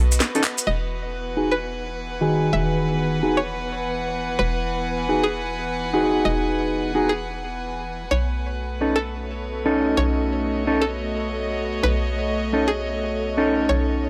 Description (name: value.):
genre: UK garage, two-step garage.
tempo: 129 BPM.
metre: 4/4.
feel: swing 63% on 16ths.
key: E major.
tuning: A4 = 440 Hz.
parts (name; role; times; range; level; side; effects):
soft string machine; sustained chords; 0.0-14.1 s; A3 to B4; -34 LUFS; equal; ensemble chorus.
hollow knocking FM bass; bass; 0.0-14.1 s; E1 to B1; -30 LUFS; equal; none.
rich chamber string section; texture; 0.0-14.1 s; E3 to G#5; -31 LUFS; equal; none.
garage drum kit; drums; 0.1-0.8 s; crash cymbal, handclaps, hi-hat, snare drum; -26 LUFS; equal; low-pass filter on hats, low-pass filter on snare, low-pass filter on cymbals.
maracas; percussion; 0.1-0.7 s; none; -28 LUFS; equal; none.
mellow electric guitar; stabs; 0.3-14.1 s; D#3 to A4; -24 LUFS; equal; low-pass filter.
string-like resonator pluck; melody; 0.7-14.0 s; G#4 to E5; -29 LUFS; equal; chorus, tape echo.
room: light reverb.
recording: dry, gritty hardware recording.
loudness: -23 LUFS.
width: mono.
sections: 0.7-14.1 A section.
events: break 0.2-0.7; drum fill 0.4; filter sweep on clean electric guitar 0.7-14.1.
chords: 0.0 B; 0.7 Emaj9; 8.1 B9.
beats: 0.21 | 0.67 1.14 1.60 2.07 | 2.53 3.00 3.46 3.93 | 4.39 4.86 5.32 5.79 | 6.25 6.72 7.18 7.65 | 8.11 8.58 9.04 9.51 | 9.97 10.44 10.90 11.37 | 11.83 12.30 12.77 13.23 | 13.70.